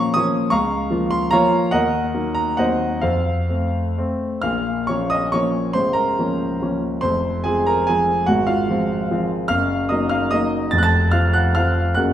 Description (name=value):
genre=classical, romantic triple-time dance for piano with dotted rhythms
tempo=118-164 BPM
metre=3/4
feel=rubato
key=Bb minor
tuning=A4 = 439 Hz
part: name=warm grand piano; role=solo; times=0.0-12.1 s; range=Db1 to A6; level=-17 LUFS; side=equal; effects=none
room=wet recital hall reverb, RT60 1.5 s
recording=heard from further back in the room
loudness=-17 LUFS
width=side -11 dB against mid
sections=0.0-4.4 A section; 4.4-12.1 B section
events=none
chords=0.0 Bbm; 0.5 Bbm/Db; 1.7 Ebm; 2.6 Cdim/Eb; 3.0 F; 4.4 Bbm; 5.7 Bbm/Db; 7.0 Fm; 8.3 Fm/Ab; 9.5 Ebm/Gb; 10.7 F